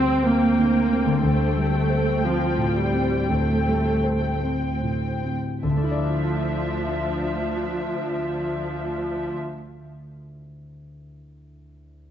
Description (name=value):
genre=cinematic, emotional film score for orchestra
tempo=48-61 BPM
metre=4/4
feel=rubato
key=D minor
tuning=A4 = 440 Hz
part: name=muted studio violin section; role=second line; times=0.0-9.3 s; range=C4 to G5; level=-30 LUFS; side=left 4 dB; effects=none
part: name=dark concert grand piano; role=accompaniment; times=0.0-12.1 s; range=D2 to E5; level=-26 LUFS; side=equal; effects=none
part: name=muted studio viola section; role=accompaniment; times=0.0-9.3 s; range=F3 to C4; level=-24 LUFS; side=right 1 dB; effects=none
part: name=concert harp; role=arpeggios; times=0.0-9.7 s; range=D3 to E5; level=-32 LUFS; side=left 6 dB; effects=none
part: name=muted studio cello section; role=bass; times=0.0-9.3 s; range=D2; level=-32 LUFS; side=right 4 dB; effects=none
room=moderate scoring stage reverb, RT60 1.9 s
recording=worn, warbling old tape, cassette tape, warbly pitch drift, nothing above 7.7 kHz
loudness=-21 LUFS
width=side -10 dB against mid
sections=0.0-5.6 A section; 5.6-10.4 B section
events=slowing down 0.0-5.6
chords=0.0 Csus2/D; 1.2 Am7/D; 5.6 Dmadd9